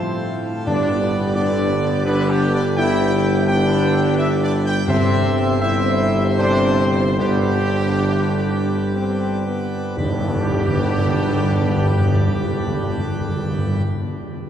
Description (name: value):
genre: classical, ceremonial fanfare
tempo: 58-87 BPM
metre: 3/4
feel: straight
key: G major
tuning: A4 = 440 Hz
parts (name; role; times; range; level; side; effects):
- mellow trumpet section; melody; 0.0-13.8 s; G4 to G5; -25 LUFS; right 1 dB; none
- mellow French horn section; sustained chords; 0.0-13.8 s; B3 to E4; -25 LUFS; left 1 dB; none
- pipe organ, plenum; sustained chords; 0.0-13.8 s; G2 to C5; -25 LUFS; equal; none
- warm trombone section; sustained chords; 0.0-13.8 s; G2 to D4; -27 LUFS; equal; none
- mellow tuba; bass; 0.0-13.8 s; G1; -22 LUFS; right 1 dB; none
- timpani; percussion; 0.7-1.7, 4.9-13.8 s; G2; -23 LUFS; equal; none
- tam-tam; percussion; 10.0-14.0 s; none; -32 LUFS; equal; none
room: wet cathedral reverb, RT60 5.5 s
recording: heard from further back in the room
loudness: -16 LUFS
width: side -9 dB against mid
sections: 0.0-10.0 A section; 10.0-14.5 B section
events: slowing down 3.8-10.0; band accent 10.0-11.0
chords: 0.0 F/G; 0.7 G; 4.9 C/G; 7.2 G